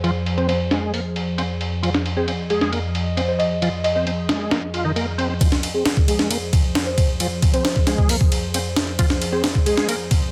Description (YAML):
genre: breakbeat, breaks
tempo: 134 BPM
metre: 4/4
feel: straight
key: F minor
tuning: A4 = 440 Hz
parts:
  - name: warbly tape-like pad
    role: sustained chords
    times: 0.0-10.3 s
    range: F2 to Eb5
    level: -28 LUFS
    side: equal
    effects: chorus, built-in reverb, vintage 12-bit sampler grit, sidechain pumping
  - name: bright tonewheel organ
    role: riff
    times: 0.0-10.0 s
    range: Eb3 to F4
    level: -28 LUFS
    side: equal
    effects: chorus vibrato, slow rotary speaker, low-pass filter, digital delay
  - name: breakbeat sampler-style drum kit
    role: drums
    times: 0.0-10.2 s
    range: hi-hat, kick drum, ride cymbal, snare drum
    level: -23 LUFS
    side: equal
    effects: low-pass filter on cymbals, low-pass filter on snare, low-pass filter on hats, low-pass filter on kick, low-pass filter on room
  - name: buzzing marimba with soft mallets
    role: melody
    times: 0.4-10.1 s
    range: Ab4 to Eb5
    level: -27 LUFS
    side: equal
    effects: telephone sound, vintage 12-bit sampler grit, low-pass filter, digital delay
room: little or no reverb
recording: none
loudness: -20 LUFS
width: mono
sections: 0.0-5.4 A section; 5.4-10.3 B section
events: build-up 5.4-10.3; filter sweep on tonewheel organ 5.4-10.3; filter sweep on marimba 5.4-10.3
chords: 0.0 Fm